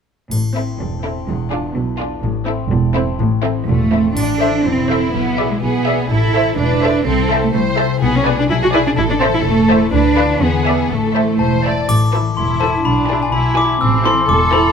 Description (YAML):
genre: cinematic, playful, whimsical film cue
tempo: 125 BPM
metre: 2/4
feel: straight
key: A minor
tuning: A4 = 440 Hz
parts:
  - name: concert harp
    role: arpeggios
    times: 0.3-14.7 s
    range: E2 to B4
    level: -22 LUFS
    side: left 11 dB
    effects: none
  - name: rich studio cello section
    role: bass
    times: 0.3-14.7 s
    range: E2 to A4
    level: -18 LUFS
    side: right 2 dB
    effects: none
  - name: warm studio double bass section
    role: bass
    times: 0.3-14.7 s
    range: E1 to E2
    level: -20 LUFS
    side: right 4 dB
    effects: none
  - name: triangle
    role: percussion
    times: 0.3-1.2, 4.2-5.1, 11.9-12.8 s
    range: none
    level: -32 LUFS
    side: left 1 dB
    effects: none
  - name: warm studio violin section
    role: melody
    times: 0.6-14.7 s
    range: E4 to D5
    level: -23 LUFS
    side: left 3 dB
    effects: none
  - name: rich studio violin section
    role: second line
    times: 0.6-14.7 s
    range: E4 to B5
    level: -24 LUFS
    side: left 1 dB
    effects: none
  - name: warm studio viola section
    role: accompaniment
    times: 0.6-14.7 s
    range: C4 to D5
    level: -25 LUFS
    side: right 2 dB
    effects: none
  - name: glockenspiel with soft plastic mallets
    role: melody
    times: 11.4-14.7 s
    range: G#5 to E6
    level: -16 LUFS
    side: left 3 dB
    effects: none
room: light reverb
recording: close, detailed microphones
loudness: -13 LUFS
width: side -6 dB against mid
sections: 0.3-4.2 A section; 4.2-11.9 B section; 11.9-14.7 B section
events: none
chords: 0.3 Am; 1.3 E7b9; 2.2 Am; 5.1 E7/B; 6.1 Am; 7.1 Am/C; 8.0 G#dim/B; 9.0 Am; 9.9 Bdim/D; 10.4 E7; 10.9 Am; 12.9 E7/B; 13.8 Am